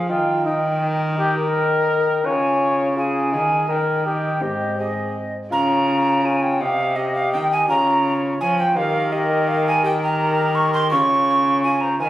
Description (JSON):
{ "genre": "classical, renaissance-style consort dance", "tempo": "167 BPM", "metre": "3/4", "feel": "straight", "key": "unclear", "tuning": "A4 = 440 Hz", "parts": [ { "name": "mellow cornet", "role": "melody", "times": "0.0-12.1 s", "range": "Eb4 to Eb5", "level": "-23 LUFS", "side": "left 2 dB", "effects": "none" }, { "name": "mellow hollow alto recorder", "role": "second line", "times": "0.0-12.1 s", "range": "Eb5 to Db6", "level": "-21 LUFS", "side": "right 2 dB", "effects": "none" }, { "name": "mellow bassoon", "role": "accompaniment", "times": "0.0-12.1 s", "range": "C4 to G4", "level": "-26 LUFS", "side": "left 1 dB", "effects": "none" }, { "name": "rich cello", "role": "bass", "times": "0.0-12.1 s", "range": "Ab2 to F3", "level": "-23 LUFS", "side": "right 1 dB", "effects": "none" } ], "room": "moderate recital hall reverb, RT60 1.7 s", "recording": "recorded on a phone in the room, club reverb", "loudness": "-17 LUFS", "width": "side -14 dB against mid", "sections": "0.0-5.5 A section; 5.5-12.1 A section", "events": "none", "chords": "0.1 Eb; 2.2 Db; 3.3 Ebsus4; 4.4 Ab; 5.5 Db; 6.6 Cm; 7.7 Db; 8.8 Eb; 10.9 Db" }